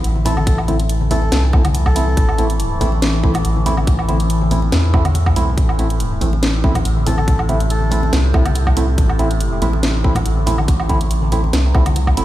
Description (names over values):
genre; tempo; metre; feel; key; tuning
deep dubstep; 141 BPM; 4/4; swing 53% on 16ths, half-time; A minor; A4 = 440 Hz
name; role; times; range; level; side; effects
overtone-sweeping drone; sustained chords; 0.0-12.2 s; A2 to E3; -25 LUFS; left 2 dB; chorus, built-in reverb
soft dub sub bass; bass; 0.0-12.2 s; E1 to E2; -17 LUFS; equal; none
garage drum kit; drums; 0.0-12.2 s; hi-hat, snare drum, woodblock; -23 LUFS; equal; studio ambience
congas; percussion; 0.2-12.1 s; none; -25 LUFS; left 2 dB; none
melodica; melody; 0.3-2.5, 7.1-8.1 s; A4; -28 LUFS; left 1 dB; dub echo
percussive organ stab; stabs; 0.3-12.2 s; A3 to E4; -23 LUFS; right 2 dB; chorus, dub echo
electronic kick drum; drums; 0.5-12.2 s; none; -16 LUFS; equal; studio ambience
room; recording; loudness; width
light reverb; played on a big sound system in a bare room, stone room reverb; -14 LUFS; side -14 dB against mid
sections
0.0-12.2 A section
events
none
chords
0.0 Am